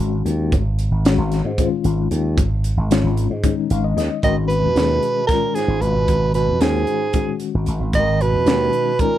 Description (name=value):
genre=electric jazz fusion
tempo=227 BPM (eighths)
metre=7/8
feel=straight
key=G# dorian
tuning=A4 = 440 Hz
part: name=reed electric piano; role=accompaniment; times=0.0-9.2 s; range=D#3 to E#5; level=-23 LUFS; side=left 11 dB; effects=fast tremolo
part: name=slap bass with an envelope filter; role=bass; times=0.0-8.7 s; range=G#1 to G#2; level=-19 LUFS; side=right 1 dB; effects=none
part: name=crisp fusion drum kit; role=drums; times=0.0-9.1 s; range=hi-hat, kick drum, snare drum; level=-22 LUFS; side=right 1 dB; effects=none
part: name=warm soprano saxophone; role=melody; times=4.2-9.2 s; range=G#4 to D#5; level=-20 LUFS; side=right 1 dB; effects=slapback echo
part: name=warm bass clarinet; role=second line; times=4.2-9.2 s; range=G#2 to D#3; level=-25 LUFS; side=right 10 dB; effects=none
room=little or no reverb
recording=none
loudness=-16 LUFS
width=side -12 dB against mid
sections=0.0-4.2 A section; 4.2-9.2 B section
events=reed electric piano fill 3.4-4.2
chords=0.0 G#7sus4